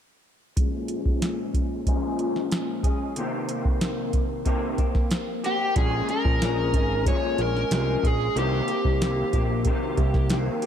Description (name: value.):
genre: indie pop, bedroom pop.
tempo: 92 BPM.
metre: 4/4.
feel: straight.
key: Bb dorian.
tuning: A4 = 440 Hz.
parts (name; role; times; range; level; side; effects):
electric guitar through a small old amp; accompaniment; 0.6-10.7 s; Bb2 to Ab4; -28 LUFS; left 2 dB; ensemble chorus, warbly pitch drift, low-pass filter.
soft vintage rhythm box; drums; 0.6-10.7 s; hi-hat, kick drum, snare drum; -25 LUFS; equal; overdrive.
overdriven slide guitar; melody; 5.5-10.3 s; G4 to Db5; -27 LUFS; left 1 dB; wide subtle chorus, ping-pong delay.
fat analog bass; bass; 5.8-10.5 s; Ab1 to C2; -26 LUFS; equal; none.
room: light reverb.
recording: none.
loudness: -22 LUFS.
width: side -9 dB against mid.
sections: 0.6-5.8 A section; 5.8-10.7 B section.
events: filter sweep on clean electric guitar 0.6-5.8.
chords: 0.6 Bbm7; 3.2 Cm7; 5.8 Bbm7; 8.4 Cm7.